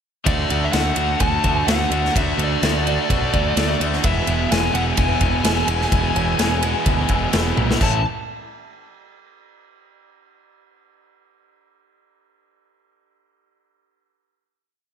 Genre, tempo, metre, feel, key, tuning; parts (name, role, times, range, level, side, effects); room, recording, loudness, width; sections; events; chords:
classic rock; 127 BPM; 4/4; straight; A4 = 441 Hz
cranked stack guitar; riff; 0.2-8.0 s; E2 to F#4; -24 LUFS; left 11 dB; overdrive, spring reverb, slapback echo
dark smooth lead guitar; melody; 0.3-8.0 s; D5 to A5; -24 LUFS; left 1 dB; overdrive, slapback echo
crunchy overdriven guitar; riff; 0.3-8.0 s; E2 to G#4; -26 LUFS; right 10 dB
growling picked electric bass; bass; 0.3-8.0 s; E1 to D2; -23 LUFS; equal; overdrive
big rock drum kit; drums; 0.3-7.9 s; crash cymbal, kick drum, ride cymbal, snare drum, toms; -22 LUFS; equal
moderate lush hall reverb, RT60 1.7 s; big arena sound; -17 LUFS; side -8 dB against mid
0.3-7.8 pre-chorus; 7.8-9.7 final chord
drum fill 7.6
0.3 D; 4.0 E; 7.8 A